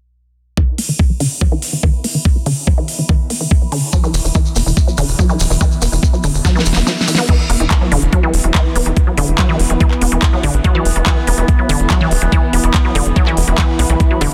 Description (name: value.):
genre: psychedelic trance.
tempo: 143 BPM.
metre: 4/4.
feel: straight.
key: unclear.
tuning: A4 = 439 Hz.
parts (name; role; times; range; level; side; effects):
unison pluck; riff; 0.6-14.3 s; D3 to B3; -21 LUFS; equal; sidechain pumping, tape echo.
electronic kick drum; drums; 0.6-14.1 s; none; -15 LUFS; equal; overdrive.
warbly tape-like pad; texture; 0.6-14.3 s; B3 to B5; -28 LUFS; equal; chorus, built-in reverb, sidechain pumping.
big-room dance drum kit; drums; 0.8-14.3 s; crash cymbal, handclaps, hi-hat, snare drum; -23 LUFS; equal; none.
shekere; percussion; 3.9-7.3 s; none; -28 LUFS; equal; none.
tight sequencer bass; bass; 4.1-14.3 s; D1 to B1; -18 LUFS; equal; none.
reverse cymbal; sound effects; 6.8-7.3 s; none; -32 LUFS; equal; none.
overtone-sweeping drone; sustained chords; 8.1-14.3 s; E3 to E4; -27 LUFS; equal; chorus, built-in reverb, sidechain pumping.
room: light reverb.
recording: dense, heavily limited modern master, faint mains hum.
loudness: -14 LUFS.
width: mono.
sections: 0.6-7.3 A section; 7.3-14.3 B section.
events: fade-in on ambient pad 0.6-7.3; filter sweep on synth arpeggio sound 0.6-7.3; drum fill 6.4-7.3; kick drops out 6.9-7.3.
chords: 0.6 E5.